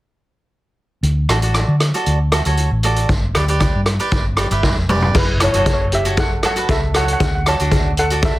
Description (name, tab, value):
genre	calypso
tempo	117 BPM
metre	4/4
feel	straight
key	D major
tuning	A4 = 441 Hz
part	hollow-body short-scale fingered electric bass	bass	1.0-8.4 s	F1 to D3	-18 LUFS	equal	none
part	street-band drum kit	drums	1.0-8.4 s	crash cymbal, hi-hat, kick drum, rim click, snare drum, toms	-18 LUFS	equal	soft clipping on snare
part	cavaquinho	accompaniment	1.3-8.3 s	D4 to E5	-22 LUFS	right 2 dB	none
part	steel pan	melody	5.2-8.4 s	E4 to A5	-20 LUFS	equal	digital delay
part	cowbell	percussion	5.2-8.4 s	none	-27 LUFS	left 8 dB	none
room	light reverb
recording	dense, heavily limited modern master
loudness	-14 LUFS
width	side -17 dB against mid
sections	1.0-5.2 A section; 5.2-8.4 B section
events	drum fill 4.6-5.2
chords	1.0 D; 3.1 G; 5.2 F#m7; 7.2 D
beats	| 1.04 1.55 2.07 2.58 | 3.10 3.61 4.13 4.64 | 5.16 5.67 6.18 6.70 | 7.21 7.72 8.23